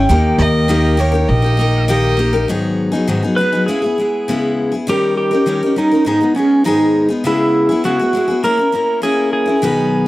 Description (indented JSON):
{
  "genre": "acoustic folk duo or small band",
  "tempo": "101 BPM",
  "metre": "4/4",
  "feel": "straight",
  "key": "G# minor",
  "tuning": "A4 = 440 Hz",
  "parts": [
    { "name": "pedal steel guitar", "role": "melody", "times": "0.0-10.1 s", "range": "C#4 to G5", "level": "-16 LUFS", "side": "right 1 dB", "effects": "none" },
    { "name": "picked steel-string acoustic guitar", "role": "accompaniment", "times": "0.0-10.1 s", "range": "G#2 to B4", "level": "-16 LUFS", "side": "left 2 dB", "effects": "none" },
    { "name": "mellow accordion", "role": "sustained chords", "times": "0.0-2.5 s", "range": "D#3 to G4", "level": "-26 LUFS", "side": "right 1 dB", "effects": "none" },
    { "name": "upright bass", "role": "bass", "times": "0.0-2.4 s", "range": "A#1 to D#2", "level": "-15 LUFS", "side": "equal", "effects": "none" },
    { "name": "warm fiddle", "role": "second line", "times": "0.4-2.4 s", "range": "C#5 to D#5", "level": "-21 LUFS", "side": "right 3 dB", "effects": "none" }
  ],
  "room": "little or no reverb",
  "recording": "dry, close 1970s-style studio recording",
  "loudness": "-13 LUFS",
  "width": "side -17 dB against mid",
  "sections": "0.0-2.5 A section; 2.5-10.1 B section",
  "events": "none",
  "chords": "0.1 D#; 2.5 G#m7; 3.7 C#m7; 4.9 D#7; 6.1 G#m; 7.2 C#m7; 8.4 A#dim"
}